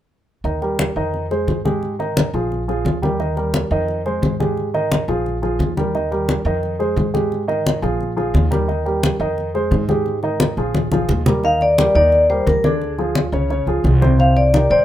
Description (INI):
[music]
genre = Afro-Cuban jazz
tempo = 175 BPM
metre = 4/4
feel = straight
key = Eb major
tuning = A4 = 440 Hz
[part]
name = warm baby grand piano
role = accompaniment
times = 0.4-14.8 s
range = C3 to Eb5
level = -20 LUFS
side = right 1 dB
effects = none
[part]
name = upright bass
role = bass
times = 0.4-14.8 s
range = Bb1 to Ab2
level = -22 LUFS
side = equal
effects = none
[part]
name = congas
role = percussion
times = 0.4-14.7 s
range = none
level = -21 LUFS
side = left 2 dB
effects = none
[part]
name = vibraphone with medium hard mallets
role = melody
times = 11.4-14.8 s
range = Ab4 to F5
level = -15 LUFS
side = left 1 dB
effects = none
[sound]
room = light reverb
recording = minimal, uncompressed stereo recording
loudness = -16 LUFS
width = side -12 dB against mid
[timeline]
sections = 0.4-11.4 A section; 11.4-14.8 B section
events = drum fill 10.7-11.4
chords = 0.4 Eb; 1.1 Fm7; 1.8 Bb5; 3.2 Eb; 3.9 Fm7; 4.6 Bb5; 5.9 Eb; 6.6 Fm7; 7.3 Bb5; 8.7 Eb; 9.4 Fm7; 10.1 Bb5; 11.4 Ebmaj7; 12.8 Ddim; 13.5 Db; 14.2 Cmadd9